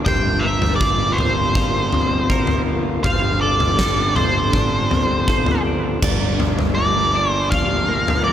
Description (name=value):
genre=post-rock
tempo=80 BPM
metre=4/4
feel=straight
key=G minor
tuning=A4 = 438 Hz
part: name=rich symphonic string section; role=sustained chords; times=0.0-8.3 s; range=G3 to Bb4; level=-31 LUFS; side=right 2 dB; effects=none
part: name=clean electric guitar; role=arpeggios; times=0.0-8.3 s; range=A4 to D5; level=-30 LUFS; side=right 3 dB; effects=analog delay
part: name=twelve-string electric guitar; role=arpeggios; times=0.0-8.3 s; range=G2 to Bb4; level=-26 LUFS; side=left 3 dB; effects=analog delay
part: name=fuzz fingered electric bass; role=bass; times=0.0-8.3 s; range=G1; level=-23 LUFS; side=equal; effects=overdrive
part: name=octave-fuzz lead guitar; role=melody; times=0.1-8.3 s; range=C5 to G5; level=-21 LUFS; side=equal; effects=distortion, analog delay
part: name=huge arena drum kit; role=drums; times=0.1-8.3 s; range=crash cymbal, kick drum, snare drum, toms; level=-20 LUFS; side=equal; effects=none
room=light reverb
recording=none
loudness=-16 LUFS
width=side -10 dB against mid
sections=0.0-6.0 A section; 6.0-8.3 B section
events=none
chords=0.1 C7sus4/G; 3.0 Dm7/G; 6.0 Gm7